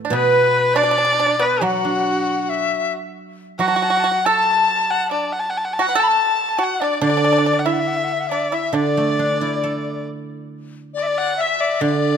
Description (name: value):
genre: chinese traditional, Chinese chamber ensemble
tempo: 69 BPM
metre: 2/4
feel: rubato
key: D gong mode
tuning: A4 = 440 Hz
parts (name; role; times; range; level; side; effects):
- pipa; second line; 0.0-10.0 s; F#3 to B4; -23 LUFS; right 8 dB; none
- guzheng; accompaniment; 0.0-12.2 s; A2 to A4; -22 LUFS; right 3 dB; none
- rich erhu; melody; 0.1-12.2 s; F#4 to A5; -20 LUFS; equal; none
- bright reedy dizi; second line; 0.1-12.2 s; B4 to B5; -22 LUFS; left 8 dB; none
room: light reverb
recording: close, detailed microphones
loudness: -16 LUFS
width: side -7 dB against mid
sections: 0.0-10.5 A section; 10.5-12.2 B section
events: none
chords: none